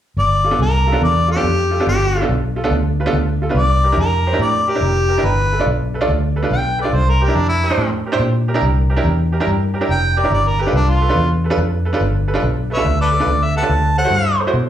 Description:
electric blues shuffle; 142 BPM; 4/4; swing 67% on 8ths; G mixolydian; A4 = 440 Hz
warm harmonica; melody; 0.2-14.4 s; D4 to A5; -18 LUFS; left 1 dB; overdrive, slapback echo
vintage muted fingered electric bass; bass; 0.2-14.7 s; F1 to B2; -17 LUFS; equal
bright upright piano; accompaniment; 0.4-14.5 s; B3 to D5; -20 LUFS; right 3 dB; slapback echo
light reverb; live gig heard through the venue's PA, club reverb; -14 LUFS; side -10 dB against mid
0.2-14.7 A section
0.2 G7; 3.6 C7; 5.2 G7; 6.9 C7; 10.3 G7; 13.7 D7
| 0.17 0.59 1.01 1.44 | 1.86 2.29 2.71 3.13 | 3.55 3.98 4.40 4.82 | 5.24 5.67 6.09 6.51 | 6.93 7.36 7.78 8.20 | 8.62 9.04 9.47 9.89 | 10.31 10.73 11.16 11.58 | 12.00 12.42 12.85 13.27 | 13.69 14.11 14.53

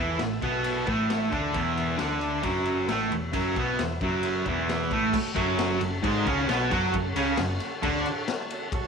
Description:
garage rock duo or trio; 134 BPM; 4/4; straight; F# minor; A4 = 440 Hz
combo organ; sustained chords; 0.0-8.9 s; E4 to E5; -37 LUFS; right 6 dB; lush chorus
cranked stack guitar; riff; 0.0-8.1 s; E2 to F#4; -25 LUFS; right 1 dB; overdrive
hollow-body short-scale picked electric bass; bass; 0.0-8.0 s; E1 to F#2; -34 LUFS; equal
raw garage drum kit; drums; 0.2-8.8 s; crash cymbal, kick drum, ride cymbal, snare drum; -32 LUFS; left 4 dB
moderate echo chamber reverb, RT60 1.7 s, small room ambience; 1960s-style stereo; -24 LUFS; side -6 dB against mid
0.0-5.1 A section; 5.1-8.9 B section
0.0 A5; 1.6 E5; 5.1 F#m
0.20 0.65 1.10 | 1.55 2.00 2.45 2.90 | 3.35 3.80 4.25 4.70 | 5.14 5.59 6.04 6.49 | 6.93 7.38 7.83 8.27 | 8.72

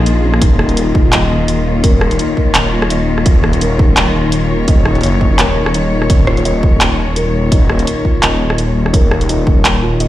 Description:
half-time drum and bass; 169 BPM; 4/4; swing 55% on 16ths, half-time; A4 = 440 Hz
dark chamber cello section; sustained chords; 0.0-10.1 s; Eb3 to Db5; -19 LUFS; left 3 dB; sidechain pumping
felt-muted upright piano; arpeggios; 0.0-10.1 s; Db4 to Eb5; -21 LUFS; equal; tape echo
dark detuned saw bass; bass; 0.0-10.1 s; Eb1 to Bb1; -15 LUFS; equal
drum and bass drum kit; drums; 0.1-10.1 s; handclaps, hi-hat, rim click; -16 LUFS; equal
electronic kick drum; drums; 0.4-9.5 s; -12 LUFS; equal
light reverb; played on a big sound system in a bare room, large studio reverb; -10 LUFS; side -14 dB against mid
0.0-10.1 A section
0.0 Eb5
0.06 | 0.42 0.77 1.13 1.48 | 1.84 2.19 2.55 2.90 | 3.26 3.61 3.97 4.32 | 4.68 5.03 5.39 5.74 | 6.10 6.45 6.81 7.16 | 7.52 7.87 8.23 8.58 | 8.94 9.29 9.65 10.00

